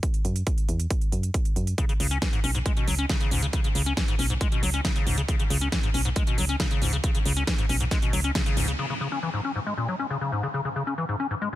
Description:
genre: uplifting trance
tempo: 137 BPM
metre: 4/4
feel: straight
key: C# minor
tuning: A4 = 440 Hz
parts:
  - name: big-room dance drum kit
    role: drums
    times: 0.0-8.9 s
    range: crash cymbal, hi-hat, snare drum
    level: -32 LUFS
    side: right 1 dB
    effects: sidechain pumping on hats, low-pass filter on hats, low-pass filter on snare, sidechain pumping on cymbals, low-pass filter on cymbals
  - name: electronic kick drum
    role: drums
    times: 0.0-8.4 s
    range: none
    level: -25 LUFS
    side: equal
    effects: none
  - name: solid FM bass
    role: bass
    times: 0.2-8.7 s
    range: B1 to F#2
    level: -27 LUFS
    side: equal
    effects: sidechain pumping
  - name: liquid acid bass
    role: arpeggios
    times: 1.8-11.6 s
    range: G#2 to C#4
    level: -28 LUFS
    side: left 3 dB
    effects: chorus, sidechain pumping, ping-pong delay
room: digital ambience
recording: dense, heavily limited modern master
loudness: -23 LUFS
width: side -14 dB against mid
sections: 0.0-8.8 A section; 8.8-11.6 B section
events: band accent 8.4; filter sweep on acid bass 8.8-11.6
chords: 0.0 Esus2; 1.8 C#5; 8.8 N.C.

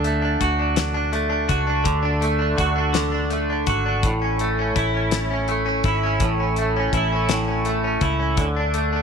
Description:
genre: six-eight pop ballad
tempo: 55 BPM (dotted quarters)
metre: 6/8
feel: straight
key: A major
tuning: A4 = 439 Hz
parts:
  - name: direct-recorded clean electric guitar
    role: accompaniment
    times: 0.0-9.0 s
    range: A2 to A4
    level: -21 LUFS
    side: right 1 dB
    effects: double-tracked left and right
  - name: vintage muted fingered electric bass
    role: bass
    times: 0.0-9.0 s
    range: G#1 to D2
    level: -24 LUFS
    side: equal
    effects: none
  - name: damped 70s drum kit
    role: drums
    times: 0.0-8.9 s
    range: hi-hat, kick drum, snare drum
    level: -25 LUFS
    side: left 3 dB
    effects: none
room: light reverb, small room ambience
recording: 1960s-style stereo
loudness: -19 LUFS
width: side -6 dB against mid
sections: 0.0-9.0 A section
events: none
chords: 0.0 D; 4.0 A; 8.4 D5

